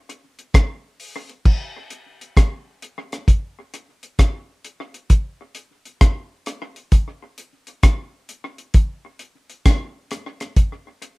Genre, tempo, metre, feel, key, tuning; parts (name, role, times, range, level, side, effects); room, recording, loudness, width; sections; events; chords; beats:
reggae; 66 BPM; 4/4; swing 65% on 16ths
deep reggae drum kit; drums; 0.1-11.2 s; crash cymbal, hi-hat, kick drum, rim click; -15 LUFS; equal
light reverb; rough home demo mix; -17 LUFS; side -28 dB against mid
0.0-1.5 A section; 1.5-11.2 B section
0.55 | 1.46 2.37 3.28 4.19 | 5.10 6.01 6.92 7.83 | 8.74 9.65 10.56